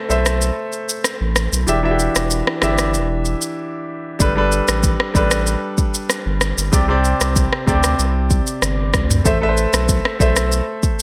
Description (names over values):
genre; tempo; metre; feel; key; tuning
afrobeats; 95 BPM; 4/4; straight; unclear; A4 = 440 Hz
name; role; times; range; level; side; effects
clear baby grand piano; accompaniment; 0.0-11.0 s; C3 to E5; -22 LUFS; equal; none
saturated sub bass; bass; 0.1-10.6 s; E1 to D2; -22 LUFS; equal; none
afro-pop drum kit; drums; 0.1-11.0 s; kick drum, rim click, shaker, toms; -21 LUFS; equal; gated reverb
room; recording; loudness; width
light reverb; bright 1980s-style digital production; -18 LUFS; mono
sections
0.0-11.0 A section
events
break 0.0-4.2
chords
0.0 Am; 1.7 Em7; 4.2 Gadd9; 6.7 Csus2; 9.3 Am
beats
0.41 1.04 | 1.68 2.31 2.94 3.57 | 4.20 4.83 5.47 6.10 | 6.73 7.36 7.99 8.62 | 9.26 9.89 10.52